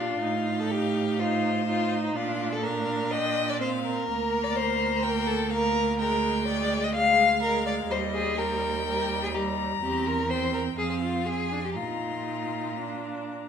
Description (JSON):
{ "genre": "quick classical-period movement for string quartet", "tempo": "124 BPM", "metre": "4/4", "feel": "straight", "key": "Bb major", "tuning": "A4 = 440 Hz", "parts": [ { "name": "clear violin", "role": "melody", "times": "0.0-13.5 s", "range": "C5 to Bb5", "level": "-34 LUFS", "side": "left 9 dB", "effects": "none" }, { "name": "rich violin", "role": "second line", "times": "0.0-13.3 s", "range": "Eb4 to F5", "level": "-27 LUFS", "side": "left 3 dB", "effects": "none" }, { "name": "rich viola", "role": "accompaniment", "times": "0.0-13.5 s", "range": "G3 to Eb4", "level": "-32 LUFS", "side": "right 4 dB", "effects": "none" }, { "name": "clear cello", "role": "bass", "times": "0.0-13.5 s", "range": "D2 to Bb2", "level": "-31 LUFS", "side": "right 5 dB", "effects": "none" } ], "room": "moderate recital hall reverb, RT60 1.6 s", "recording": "minimal, uncompressed stereo recording", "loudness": "-24 LUFS", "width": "side -7 dB against mid", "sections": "0.0-13.5 A section", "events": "none", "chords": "0.2 F7/A; 2.2 Bb; 4.1 Bb/D; 6.0 Bb7/D; 7.9 Eb; 9.8 C7/E; 10.8 Fm; 11.8 Bbsus4; 12.8 Bb", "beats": "| 0.22 0.71 1.19 1.68 | 2.16 2.64 3.12 3.60 | 4.08 4.56 5.03 5.51 | 5.99 6.47 6.94 7.42 | 7.90 8.38 8.86 9.34 | 9.82 10.30 10.79 11.28 | 11.77 12.28 12.78 13.29" }